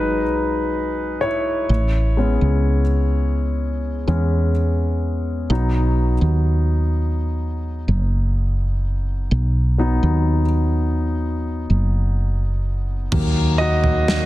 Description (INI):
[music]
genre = pop ballad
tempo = 63 BPM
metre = 4/4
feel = straight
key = B mixolydian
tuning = A4 = 440 Hz
[part]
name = warm concert grand piano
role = accompaniment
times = 0.0-14.3 s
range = D#3 to D#5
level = -23 LUFS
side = left 2 dB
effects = none
[part]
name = woody fretless electric bass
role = bass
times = 0.0-14.3 s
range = F#1 to E2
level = -19 LUFS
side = equal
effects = analog chorus
[part]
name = modern studio drum kit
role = drums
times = 13.1-14.3 s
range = crash cymbal, kick drum, snare drum, toms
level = -21 LUFS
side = right 1 dB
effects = none
[sound]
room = small room reverb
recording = dense, heavily limited modern master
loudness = -17 LUFS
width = side -16 dB against mid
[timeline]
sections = 0.0-13.1 A section; 13.1-14.3 B section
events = grand piano solo 0.0-13.1, 13.1-14.3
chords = 0.0 Emaj7; 1.7 Amaj7; 5.5 B; 13.1 D#m